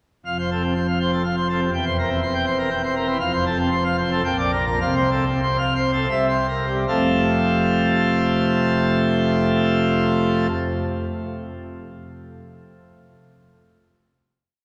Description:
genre	classical, organ toccata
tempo	73-123 BPM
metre	3/4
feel	straight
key	F major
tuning	A4 = 441 Hz
part	pipe organ, plenum	solo	0.3-10.5 s	E1 to G5	-21 LUFS	equal	none
room	wet cathedral reverb, RT60 4.1 s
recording	none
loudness	-21 LUFS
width	mono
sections	0.3-6.9 A section; 6.9-11.8 final chord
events	slowing down 2.5-6.9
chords	0.3 F; 1.7 C7/E; 3.2 F; 4.2 Gm/Bb; 4.8 F/C; 6.1 C7; 6.9 F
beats	| 0.26 0.76 1.25 | 1.73 2.22 2.71 | 3.21 3.72 4.25 | 4.81 5.42 6.10 | 6.88 7.70 8.52 | 9.35 10.17

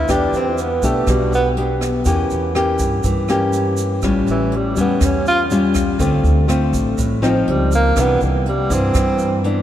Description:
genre	bossa nova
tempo	122 BPM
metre	4/4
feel	straight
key	unclear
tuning	A4 = 440 Hz
part	breathy tenor saxophone	melody	0.0-9.5 s	D3 to F4	-21 LUFS	right 2 dB	none
part	nylon-string guitar	accompaniment	0.0-9.6 s	G2 to G4	-18 LUFS	left 2 dB	none
part	upright bass	bass	0.0-9.6 s	A1 to G2	-20 LUFS	right 1 dB	none
part	jazz brush drum kit	drums	0.1-9.6 s	hi-hat, kick drum, rim click	-25 LUFS	right 1 dB	none
part	tube shaker	percussion	0.1-9.4 s	none	-35 LUFS	right 9 dB	none
room	wet cathedral reverb, RT60 5.5 s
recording	in a vast, echoing space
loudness	-15 LUFS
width	side -11 dB against mid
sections	0.0-9.6 A section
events	tenor saxophone solo 0.0-9.6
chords	0.1 Em7; 2.1 Edim7; 4.0 A7b13; 6.0 Dm7; 7.5 Dbmaj9; 8.0 Cmaj9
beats	| 0.09 0.58 1.08 1.57 | 2.06 2.55 3.05 3.54 | 4.03 4.52 5.02 5.51 | 6.00 6.49 6.99 7.48 | 7.97 8.46 8.95 9.44

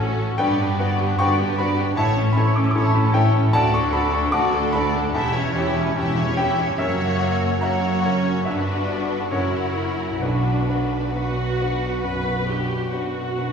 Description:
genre	classical, romantic movement for piano and orchestra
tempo	65-77 BPM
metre	4/4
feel	rubato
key	B minor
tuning	A4 = 439 Hz
part	clear grand piano	melody	0.0-13.5 s	B1 to E6	-22 LUFS	left 1 dB	none
part	warm symphonic violin section	melody	0.0-13.5 s	A4 to E5	-31 LUFS	left 2 dB	none
part	warm symphonic violin section	second line	0.0-13.5 s	C#4 to A4	-29 LUFS	left 3 dB	none
part	rich symphonic viola section	accompaniment	0.0-13.5 s	A3 to B4	-29 LUFS	right 2 dB	none
part	dark symphonic cello section	bass	0.0-13.5 s	D2 to B2	-27 LUFS	right 1 dB	none
part	warm studio double bass section	bass	0.0-13.5 s	E1 to D2	-26 LUFS	right 1 dB	none
room	wet recital hall reverb, RT60 1.3 s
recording	recorded in a church or concert hall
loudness	-19 LUFS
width	side -6 dB against mid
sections	0.0-13.5 A section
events	none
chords	0.4 Gmaj7; 2.0 A; 3.5 D; 5.1 C#dim/E; 6.8 F#7; 8.5 Gmaj7; 9.3 F#7; 10.2 Bm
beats	| 0.39 1.20 1.97 2.75 | 3.54 4.34 5.15 5.96 | 6.79 7.62 8.46 9.32 | 10.22 11.13 12.04 12.92

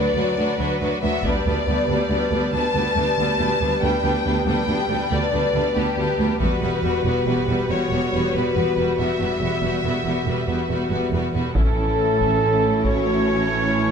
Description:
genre	cinematic, epic orchestral film score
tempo	93 BPM (dotted quarters)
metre	12/8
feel	straight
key	E dorian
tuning	A4 = 440 Hz
part	warm symphonic violin section	melody	0.0-13.9 s	G4 to A5	-26 LUFS	left 4 dB	none
part	warm symphonic violin section	second line	0.0-13.9 s	D4 to B4	-28 LUFS	left 2 dB	none
part	rich symphonic viola section	accompaniment	0.0-13.9 s	E3 to D4	-28 LUFS	equal	none
part	dark French horn section	sustained chords	0.0-13.9 s	F#3 to B4	-26 LUFS	left 2 dB	none
part	rich symphonic double bass section	bass	0.0-13.9 s	E1 to D2	-27 LUFS	right 4 dB	none
part	warm symphonic cello section	bass	0.0-13.9 s	D2 to A2	-27 LUFS	right 2 dB	none
part	taiko ensemble	drums	1.2-2.1, 6.4-7.6, 11.6-13.2 s	none	-25 LUFS	equal	none
part	mellow trombone section	sustained chords	11.6-13.9 s	E3 to C#4	-27 LUFS	right 4 dB	none
part	clear trumpet section	stabs	11.6-13.9 s	A4 to C#5	-22 LUFS	right 2 dB	none
room	wet recital hall reverb, RT60 1.7 s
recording	none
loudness	-18 LUFS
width	side -6 dB against mid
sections	0.0-11.6 A section; 11.6-13.9 B section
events	none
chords	0.0 Bm/D; 1.2 G/D; 6.4 Emadd9; 11.6 A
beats	0.59 | 1.24 1.89 2.53 3.18 | 3.82 4.47 5.11 5.76 | 6.40 7.05 7.69 8.34 | 8.98 9.63 10.27 10.92 | 11.56 12.21 12.85 13.50

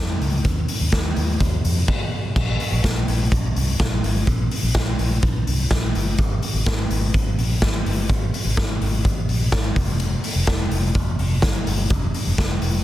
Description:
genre	jangly indie pop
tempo	126 BPM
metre	4/4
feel	straight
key	F minor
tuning	A4 = 437 Hz
part	vintage muted fingered electric bass	bass	0.0-12.8 s	F1 to F2	-22 LUFS	equal	none
part	raw garage drum kit	drums	0.2-12.7 s	crash cymbal, hi-hat, kick drum, snare drum	-21 LUFS	equal	none
room	little or no reverb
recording	dense, heavily limited modern master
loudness	-18 LUFS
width	side -14 dB against mid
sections	0.0-2.4 A section; 2.4-12.8 B section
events	stop 1.9-2.4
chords	none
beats	| 0.45 0.93 1.41 1.89 | 2.36 2.84 3.32 3.80 | 4.28 4.75 5.23 5.71 | 6.19 6.66 7.14 7.62 | 8.09 8.57 9.05 9.52 | 10.00 10.48 10.95 11.43 | 11.91 12.38

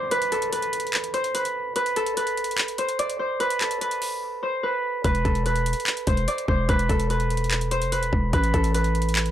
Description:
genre	hip hop, trap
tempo	146 BPM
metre	4/4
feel	half-time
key	unclear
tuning	A4 = 440 Hz
part	Celtic harp	melody	0.0-9.3 s	A4 to D5	-24 LUFS	right 1 dB	low-pass filter
part	downlifter	sound effects	0.0-1.8 s	none	-46 LUFS	equal	none
part	trap drum kit	drums	0.1-9.3 s	handclaps, hi-hat, kick drum	-26 LUFS	equal	none
part	growling 808-style bass	bass	5.0-9.3 s	E1 to A1	-24 LUFS	equal	none
room	little or no reverb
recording	dry, gritty hardware recording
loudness	-22 LUFS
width	side -11 dB against mid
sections	0.0-9.3 A section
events	break 0.0-5.0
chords	0.0 N.C.; 5.0 E5; 8.3 Asus2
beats	| 0.11 0.52 0.94 1.35 | 1.76 2.17 2.58 2.99 | 3.40 3.81 4.22 4.63 | 5.04 5.46 5.87 6.28 | 6.69 7.10 7.51 7.92 | 8.33 8.74 9.15

